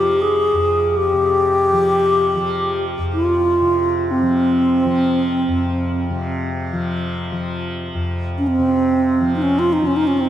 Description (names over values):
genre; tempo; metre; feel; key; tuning
world meditative, free-time meditation music; free time; none; none; F minor; A4 = 441 Hz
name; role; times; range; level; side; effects
bright bass flute; melody; 0.0-10.3 s; C4 to Ab4; -16 LUFS; equal; diffuse ambient delay
tanpura; drone; 0.0-10.3 s; F2 to F3; -23 LUFS; left 1 dB; none
bronze singing bowl; texture; 0.0-4.8 s; none; barely audible; none; none
room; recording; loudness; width
wet huge ambient reverb, RT60 3.8 s; dark, warm production; -16 LUFS; side -11 dB against mid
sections
0.0-10.3 A section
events
none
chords
none